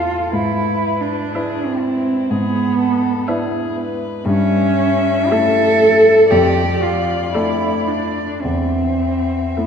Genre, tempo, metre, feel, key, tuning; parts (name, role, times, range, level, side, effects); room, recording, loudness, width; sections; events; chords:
classical, slow romantic movement for piano quartet; 52-62 BPM; 4/4; rubato; A4 = 443 Hz
muted violin; melody; 0.0-9.7 s; E4 to E5; -23 LUFS; left 7 dB
muted cello; second line; 0.0-9.7 s; B3 to A4; -16 LUFS; right 2 dB
dark grand piano; accompaniment; 0.0-9.7 s; E2 to B4; -20 LUFS; left 2 dB
muted viola; accompaniment; 0.0-9.7 s; A4 to E5; -31 LUFS; right 1 dB
wet concert hall reverb, RT60 2.3 s; dark, warm production; -14 LUFS; side -7 dB against mid
0.0-9.7 A section
0.3 E7/G#; 4.3 A7/G; 6.3 Dm/F; 8.4 Esus4